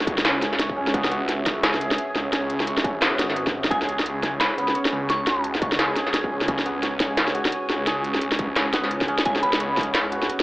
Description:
half-time drum and bass; 173 BPM; 4/4; swing 59% on 16ths, half-time; C# minor; A4 = 440 Hz
deep dark ambient pad; sustained chords; 0.0-10.4 s; C#4 to G#5; -31 LUFS; right 1 dB; chorus, built-in reverb, sidechain pumping
santur; arpeggios; 0.0-10.4 s; B3 to C#5; -28 LUFS; equal; digital delay
phased detuned saw bass; bass; 0.0-10.3 s; G#1 to C#2; -30 LUFS; equal; phaser, tube saturation
industrial drum kit; drums; 0.0-10.4 s; hi-hat, snare drum; -23 LUFS; equal
electronic kick drum; drums; 0.1-9.9 s; -30 LUFS; equal; distortion
soft synth bell; melody; 3.7-5.4, 9.3-9.9 s; G#5 to C#6; -27 LUFS; equal; chorus, vintage 12-bit sampler grit, digital delay
moderate lush hall reverb, RT60 2.2 s; AM radio sound; -20 LUFS; side -20 dB against mid
0.0-10.4 A section
0.0 C#m

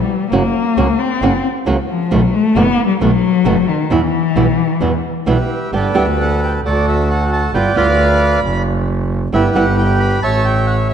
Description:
tango; 134 BPM; 4/4; rubato; E harmonic minor, G major from 5.7 s; A4 = 435 Hz
warm cello; second line; 0.0-5.3 s; D#3 to C4; -16 LUFS; left 6 dB
bright double bass; bass; 0.0-10.9 s; F#1 to E2; -17 LUFS; right 1 dB
flamenco guitar; accompaniment; 0.3-9.6 s; B2 to G4; -18 LUFS; right 3 dB
bandoneon; melody; 5.3-10.9 s; F#4 to B5; -17 LUFS; right 2 dB
moderate concert hall reverb, RT60 1.9 s; dark, warm production; -13 LUFS; side -8 dB against mid
0.0-5.7 A section; 5.7-10.9 B section
cello solo 0.0-5.7
0.3 F#; 2.1 B7; 3.9 Em; 5.7 Gadd9; 6.6 D; 7.5 G7; 8.4 N.C.; 9.3 Em/G; 10.2 A

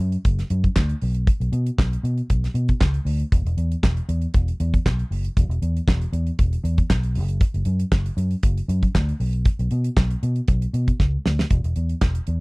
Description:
disco; 117 BPM; 4/4; straight; A4 = 440 Hz
vintage muted fingered electric bass; bass; 0.0-12.4 s; E1 to B2; -22 LUFS; equal
damped 70s drum kit; drums; 0.1-12.4 s; handclaps, hi-hat, kick drum, snare drum; -19 LUFS; equal
little or no reverb; dry, close 1970s-style studio recording; -19 LUFS; side -27 dB against mid
0.0-11.5 A section
drum fill 11.0-11.5

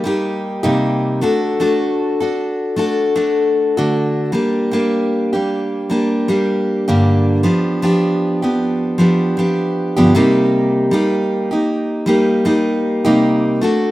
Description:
pop; 78 BPM; 4/4; swing 55% on 16ths; G harmonic minor; A4 = 440 Hz
picked steel-string acoustic guitar; solo; 0.0-13.9 s; G2 to A4; -14 LUFS; equal
light reverb, studio reverb; rough home demo mix; -14 LUFS; side -16 dB against mid
0.0-13.9 A section
0.0 Cm7; 1.2 D; 4.3 Gm; 7.4 G7; 10.1 Cm7

